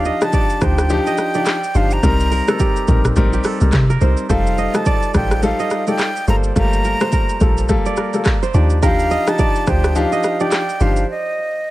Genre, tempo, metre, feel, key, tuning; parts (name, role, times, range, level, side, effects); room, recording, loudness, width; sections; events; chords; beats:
afrobeats; 106 BPM; 4/4; swing 58% on 16ths; A4 = 440 Hz
breathy concert flute; melody; 0.0-11.7 s; Eb5 to Bb5; -22 LUFS; equal
warm grand piano; accompaniment; 0.0-11.0 s; F3 to Bb4; -20 LUFS; left 2 dB
kora; riff; 0.0-11.7 s; G4 to Eb5; -24 LUFS; right 7 dB; digital delay
deep log drum bass; bass; 0.0-11.0 s; F1 to C3; -17 LUFS; equal
afro-pop drum kit; drums; 0.0-11.1 s; handclaps, hi-hat, kick drum, rim click, shaker, toms; -19 LUFS; equal
small room ambience; -14 LUFS; side -16 dB against mid
0.0-11.7 A section
break 11.1-11.7
0.0 Ebmaj9; 2.0 Cm7; 4.3 F9; 6.3 Gm9; 8.5 Ebmaj9; 11.1 N.C.
0.33 0.90 1.47 | 2.03 2.60 3.17 3.73 | 4.30 4.86 5.43 6.00 | 6.56 7.13 7.69 8.26 | 8.82 9.39 9.96 10.52 | 11.09 11.65